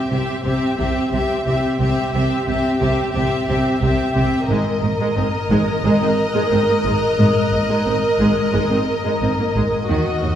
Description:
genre	cinematic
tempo	89 BPM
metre	4/4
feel	straight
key	unclear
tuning	A4 = 440 Hz
part	rich studio violin section	melody	0.0-10.4 s	Eb5 to E5	-25 LUFS	left 2 dB	none
part	warm studio violin section	second line	0.0-10.4 s	Gb4 to Bb4	-22 LUFS	equal	none
part	warm studio viola section	accompaniment	0.0-10.3 s	Eb3 to C4	-22 LUFS	equal	none
part	warm studio cello section	bass	0.1-10.3 s	Eb2 to C3	-24 LUFS	right 1 dB	none
part	warm studio double bass section	bass	0.1-10.3 s	Ab1 to Eb2	-23 LUFS	right 1 dB	none
part	dark studio violin section	texture	4.5-10.4 s	Eb6 to F#6	-34 LUFS	left 2 dB	none
room	wet scoring stage reverb, RT60 1.9 s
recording	heard from further back in the room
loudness	-16 LUFS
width	side -10 dB against mid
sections	0.0-10.4 A section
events	none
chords	0.0 C; 4.5 Absus2

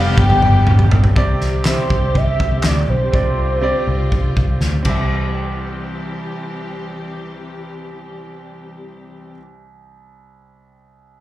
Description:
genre	piano-driven pop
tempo	122 BPM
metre	4/4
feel	straight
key	C major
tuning	A4 = 440 Hz
part	mellow horn-like synth lead	melody	0.0-4.6 s	C5 to G5	-21 LUFS	right 1 dB	chorus, tremolo, phaser, digital delay
part	clear concert grand piano	accompaniment	0.0-11.2 s	C2 to E5	-26 LUFS	right 2 dB	none
part	dark studio string section	sustained chords	0.0-9.3 s	D3 to G4	-28 LUFS	left 3 dB	none
part	vintage muted picked electric bass	bass	0.0-9.3 s	F1 to D2	-17 LUFS	equal	none
part	loose indie drum kit	drums	0.2-5.0 s	crash cymbal, handclaps, kick drum, snare drum, toms	-18 LUFS	equal	none
room	light reverb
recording	live gig heard through the venue's PA, club reverb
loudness	-14 LUFS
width	side -15 dB against mid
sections	0.0-1.2 A section; 1.2-5.1 B section; 5.1-9.0 C section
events	drum fill 0.2-1.2, 4.6-5.1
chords	0.0 G; 1.2 Csus2; 4.9 C

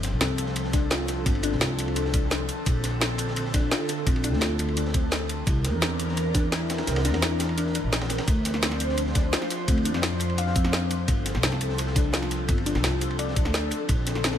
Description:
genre	liquid drum and bass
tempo	171 BPM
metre	4/4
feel	straight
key	unclear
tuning	A4 = 441 Hz
part	airy breathy pad	sustained chords	0.0-14.4 s	D3 to C5	-32 LUFS	equal	chorus, phaser, sidechain pumping
part	upright bass	bass	0.0-14.4 s	G1 to F2	-28 LUFS	equal	none
part	crunchy breakbeat drum kit	drums	0.0-14.3 s	ride cymbal, snare drum	-35 LUFS	equal	high-pass filter on cymbals, studio ambience, high-pass filter on hats, high-pass filter on snare, high-pass filter on room
part	drum and bass drum kit	drums	0.0-14.4 s	hi-hat, snare drum	-29 LUFS	equal	overdrive, studio ambience
part	harp-like synth pluck	arpeggios	0.2-14.4 s	C4 to F5	-31 LUFS	left 4 dB	chorus, tape echo
part	electronic kick drum	drums	0.7-14.0 s	none	-24 LUFS	equal	overdrive, studio ambience
room	studio reverb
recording	lossy compression artefacts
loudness	-23 LUFS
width	side -10 dB against mid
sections	0.0-14.4 A section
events	kick drops out 6.9-8.3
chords	0.0 G9sus4; 2.5 Bbmaj9; 5.5 C9; 8.3 Dm7; 11.1 G9sus4; 13.7 Bbmaj9

